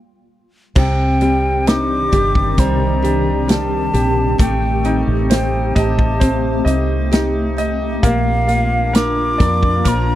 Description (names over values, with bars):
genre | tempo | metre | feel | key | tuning
pop ballad | 66 BPM | 4/4 | straight | unclear | A4 = 444 Hz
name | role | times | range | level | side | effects
granular cloud pad | sustained chords | 1.6-10.2 s | C3 to D5 | -22 LUFS | equal | built-in reverb
mellow hollow silver concert flute | melody | 0.8-10.2 s | F5 to D6 | -21 LUFS | left 1 dB | none
bright grand piano | accompaniment | 0.8-10.2 s | C3 to Eb5 | -22 LUFS | right 1 dB | none
nylon-string guitar | arpeggios | 0.8-10.2 s | Bb2 to Bb4 | -24 LUFS | left 2 dB | none
fingered electric bass | bass | 0.8-10.2 s | G1 to F2 | -19 LUFS | equal | none
natural country drum kit | drums | 0.8-10.1 s | crash cymbal, hi-hat, kick drum, snare drum | -16 LUFS | equal | none
room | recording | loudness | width
small room ambience | dry, close 1970s-style studio recording | -14 LUFS | side -13 dB against mid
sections
0.8-10.2 A section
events
stop 0.0-0.8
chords
0.0 N.C.; 0.8 Cmadd9; 4.4 Am7b5; 8.0 Bb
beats
| 0.76 1.67 2.58 3.49 | 4.39 5.30 6.21 7.12 | 8.03 8.94 9.85